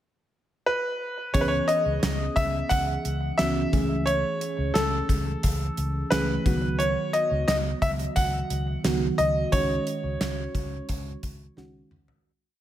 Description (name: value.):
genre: 1980s-style pop.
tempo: 88 BPM.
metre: 4/4.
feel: straight.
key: C# minor.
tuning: A4 = 439 Hz.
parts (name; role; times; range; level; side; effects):
bright grand piano; melody; 0.7-11.5 s; A4 to F#5; -27 LUFS; equal; tape echo.
mellow FM electric piano; accompaniment; 1.3-12.3 s; D#3 to G#4; -30 LUFS; right 1 dB; chorus.
vintage muted fingered electric bass; bass; 1.3-12.2 s; C#2; -30 LUFS; equal; none.
gated 80s drum kit; drums; 1.3-12.2 s; hi-hat, kick drum, snare drum, toms; -28 LUFS; equal; none.
room: light reverb, small room ambience.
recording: none.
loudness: -23 LUFS.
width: side -12 dB against mid.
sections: 0.0-1.3 pickup bar; 1.3-12.3 verse.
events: fade-out 9.5-12.3; drum fill 11.6-12.3.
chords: 0.0 N.C.; 1.3 C#m7; 3.7 Amaj7/C#; 6.5 B/C#; 9.5 G#7sus4/C#.